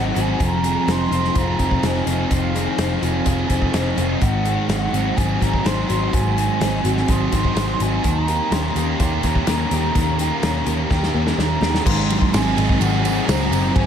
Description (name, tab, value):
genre	rock, shoegaze and dream pop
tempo	126 BPM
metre	4/4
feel	straight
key	Ab mixolydian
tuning	A4 = 442 Hz
part	concert flute	melody	0.0-13.9 s	F5 to C6	-26 LUFS	right 3 dB	tape echo
part	picked twelve-string acoustic guitar	arpeggios	0.0-13.9 s	Eb3 to G4	-29 LUFS	left 6 dB	analog chorus, tape echo
part	crunchy overdriven guitar	riff	0.0-13.9 s	Ab2 to Ab4	-24 LUFS	right 8 dB	reverse reverb
part	thick fuzz guitar	riff	0.0-13.9 s	Ab2 to Ab4	-24 LUFS	left 7 dB	distortion, ensemble chorus
part	vintage muted picked electric bass	bass	0.0-13.9 s	F1 to Eb2	-23 LUFS	equal	none
part	loose indie drum kit	drums	0.2-13.9 s	crash cymbal, hi-hat, kick drum, ride cymbal, snare drum	-23 LUFS	equal	none
part	tambourine	percussion	12.3-13.6 s	none	-35 LUFS	right 14 dB	none
room	moderate plate reverb, RT60 2.0 s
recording	dreamy mix soaked in reverb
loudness	-17 LUFS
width	side -8 dB against mid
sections	0.0-11.9 A section; 11.9-13.9 B section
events	drum fill 10.9-11.9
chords	0.4 Fm7; 4.2 Ab7; 8.0 Eb7; 11.9 Ab7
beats	| 0.40 0.88 1.35 1.83 | 2.31 2.79 3.27 3.74 | 4.22 4.70 5.18 5.66 | 6.13 6.61 7.09 7.57 | 8.04 8.52 9.00 9.48 | 9.96 10.43 10.91 11.38 | 11.86 12.34 12.81 13.28 | 13.76